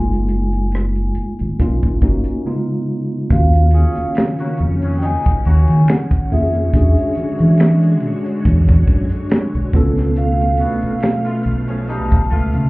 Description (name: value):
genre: R&B, neo-soul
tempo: 70 BPM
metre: 4/4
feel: swing 54% on 16ths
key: unclear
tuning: A4 = 440 Hz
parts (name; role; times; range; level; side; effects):
- vibraphone with medium mallets; melody; 0.0-12.7 s; E5 to A5; -24 LUFS; equal; none
- tine electric piano; accompaniment; 0.0-12.7 s; C#3 to A4; -22 LUFS; equal; overdrive, fast stereo tremolo
- deep dub fingered electric bass; bass; 0.0-12.7 s; F#1 to E3; -15 LUFS; equal; none
- tight funk drum kit; drums; 0.1-12.7 s; finger snaps, hi-hat, kick drum, rim click, snare drum; -16 LUFS; equal; vintage 12-bit sampler grit
- string machine, full ensemble; sustained chords; 3.3-12.7 s; B2 to E#5; -22 LUFS; equal; ensemble chorus
- maracas and finger snaps; percussion; 3.3-12.7 s; none; -40 LUFS; left 2 dB; none
- warm horn section; stabs; 3.7-12.6 s; E#3 to G#4; -27 LUFS; left 1 dB; none
room: light reverb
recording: heard muffled through a wall, club reverb, EQ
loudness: -14 LUFS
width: side -22 dB against mid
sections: 0.0-3.3 A section; 3.3-12.7 B section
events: break 2.4-3.3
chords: 0.0 F#maj13; 1.6 Bmaj9#11; 2.4 C#9; 3.3 D#m9; 6.7 E13; 9.7 C#aug7